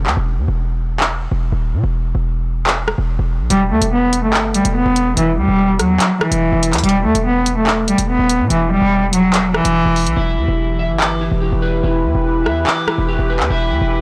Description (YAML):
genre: hip hop, drill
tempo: 144 BPM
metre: 4/4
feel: half-time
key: E minor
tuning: A4 = 441 Hz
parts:
  - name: hard-hitting 808-style bass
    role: bass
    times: 0.0-14.0 s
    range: D#1 to B2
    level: -21 LUFS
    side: equal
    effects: none
  - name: drill drum kit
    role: drums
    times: 0.1-13.5 s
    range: handclaps, hi-hat, rim click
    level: -22 LUFS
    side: equal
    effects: none
  - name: clear cello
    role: melody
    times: 3.5-10.1 s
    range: E3 to B3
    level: -17 LUFS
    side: equal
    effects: low-pass filter, digital delay
  - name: electric guitar at the edge of break-up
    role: accompaniment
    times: 10.2-14.0 s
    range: E4 to D6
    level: -24 LUFS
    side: equal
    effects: subtle chorus, low-pass filter
  - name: sweeping resonant pad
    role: sustained chords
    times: 10.2-14.0 s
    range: E3 to B4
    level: -23 LUFS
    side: equal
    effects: chorus, phaser
room: little or no reverb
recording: blown-out, overdriven recording, overdrive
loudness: -16 LUFS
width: mono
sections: 0.0-14.0 A section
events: break 0.0-3.5; hi-hats muted 10.2-14.0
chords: 0.2 E5; 3.5 Em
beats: | 0.17 0.59 1.00 1.42 | 1.84 2.25 2.67 3.09 | 3.50 3.92 4.34 4.75 | 5.17 5.59 6.00 6.42 | 6.84 7.25 7.67 8.09 | 8.50 8.92 9.34 9.75 | 10.17 10.59 11.00 11.42 | 11.84 12.25 12.67 13.09 | 13.50 13.92